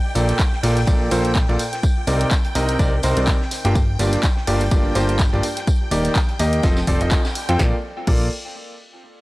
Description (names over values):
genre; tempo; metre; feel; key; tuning
piano house; 125 BPM; 4/4; swing 56% on 16ths; Bb major; A4 = 440 Hz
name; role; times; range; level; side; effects
string machine, violins; sustained chords; 0.0-7.6 s; G5; -31 LUFS; equal; ensemble chorus, sidechain pumping
clear concert grand piano; riff; 0.2-8.3 s; G2 to G5; -22 LUFS; equal; sidechain pumping, tape echo
plucky analog bass; bass; 0.2-8.3 s; Eb1 to F2; -21 LUFS; equal; tube saturation, sidechain pumping
cloth-damped thuddy drum kit; drums; 0.2-7.3 s; hi-hat, snare drum, tambourine; -34 LUFS; equal; sidechain pumping on hats, high-pass filter on hats, high-pass filter on snare, sidechain pumping on perc, high-pass filter on perc, high-pass filter on room
punchy analog drum machine; drums; 0.2-8.2 s; crash cymbal, handclaps, hi-hat, ride cymbal, snare drum; -28 LUFS; equal; none
electronic kick drum; drums; 0.4-8.2 s; none; -19 LUFS; equal; none
room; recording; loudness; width
small room ambience; dry, gritty hardware recording; -16 LUFS; side -19 dB against mid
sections
0.0-7.6 A section; 7.6-9.2 B section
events
drop 0.0-7.6; band accent 7.1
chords
0.0 Bbmaj7; 1.8 Cm9; 3.5 Gm7; 5.7 Ebmaj7; 6.6 F7; 7.6 Bbmaj7